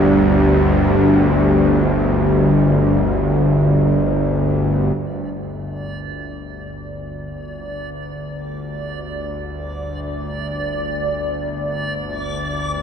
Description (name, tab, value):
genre	dark ambient drone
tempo	free time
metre	none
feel	none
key	unclear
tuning	A4 = 436 Hz
part	dark analog pad	sustained chords	0.0-5.0 s	G3 to G4	-19 LUFS	equal	chorus
part	bowed-like drone	drone	0.0-12.8 s	G1 to D2	-18 LUFS	equal	built-in reverb
part	backwards swelling texture	texture	5.8-12.8 s	D5	-27 LUFS	right 2 dB	built-in reverb
room	wet cathedral reverb, RT60 6.4 s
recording	none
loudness	-16 LUFS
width	side -8 dB against mid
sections	0.0-5.0 A section; 5.0-12.8 B section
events	fade-in on synth drone 5.0-12.8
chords	0.0 G5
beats	free time